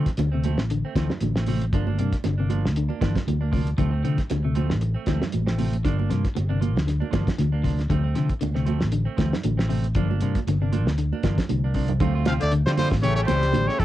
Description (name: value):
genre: afrobeat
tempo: 117 BPM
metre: 4/4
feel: swing 55% on 16ths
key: D minor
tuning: A4 = 441 Hz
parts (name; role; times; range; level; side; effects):
- semi-hollow electric guitar; arpeggios; 0.0-13.7 s; C3 to F3; -30 LUFS; left 6 dB; cassette tape, tape echo
- clean electric guitar; stabs; 0.0-13.8 s; E3 to G4; -33 LUFS; right 8 dB; cassette tape
- fingered electric bass; bass; 0.0-13.8 s; G1 to D3; -24 LUFS; equal; none
- cloth-damped thuddy drum kit; drums; 0.1-13.8 s; hi-hat, kick drum, snare drum; -27 LUFS; equal; cassette tape
- congas; percussion; 0.2-13.7 s; none; -31 LUFS; right 10 dB; none
- bright trumpet; melody; 12.3-13.8 s; A4 to F5; -25 LUFS; left 1 dB; cassette tape
- brilliant trombone; second line; 12.3-13.8 s; G3 to C4; -34 LUFS; right 7 dB; cassette tape
- warm baritone saxophone; second line; 12.3-13.8 s; A2 to F3; -33 LUFS; left 8 dB; cassette tape
room: little or no reverb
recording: home recording on cassette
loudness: -21 LUFS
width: side -14 dB against mid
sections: 0.0-12.0 A section; 12.0-13.8 B section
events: drum fill 11.5-12.0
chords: 0.0 Dm7; 1.7 Gm7; 3.8 Dm7; 5.8 Gm7; 7.9 Dm7; 10.0 Gm7; 12.0 Dm7; 13.0 A7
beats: 0.19 0.70 1.22 | 1.73 2.25 2.76 3.27 | 3.79 4.30 4.82 5.33 | 5.85 6.36 6.88 7.39 | 7.91 8.42 8.93 9.45 | 9.96 10.47 10.99 11.50 | 12.01 12.53 13.04 13.55